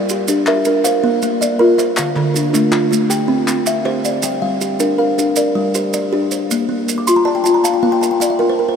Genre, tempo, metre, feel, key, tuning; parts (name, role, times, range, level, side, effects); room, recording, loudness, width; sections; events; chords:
southern african traditional, mbira-style interlocking cycle; 106 BPM (dotted quarters); 12/8; straight; G dorian; A4 = 442 Hz
kalimba; arpeggios; 0.0-8.8 s; D3 to A5; -16 LUFS; left 4 dB
kalimba; arpeggios; 0.0-8.8 s; D3 to D6; -17 LUFS; right 4 dB
maracas; percussion; 0.1-8.4 s; -26 LUFS; right 7 dB
group handclap; percussion; 0.5-4.0 s; -28 LUFS; left 2 dB
wet huge ambient reverb, RT60 7.4 s; in a vast, echoing space; -13 LUFS; side -7 dB against mid
0.0-4.2 A section; 4.2-8.8 A section
kalimba fill 6.8-8.8
0.0 Gm; 0.9 Bb; 2.0 Dm; 3.1 C; 4.2 Gm; 6.5 Bb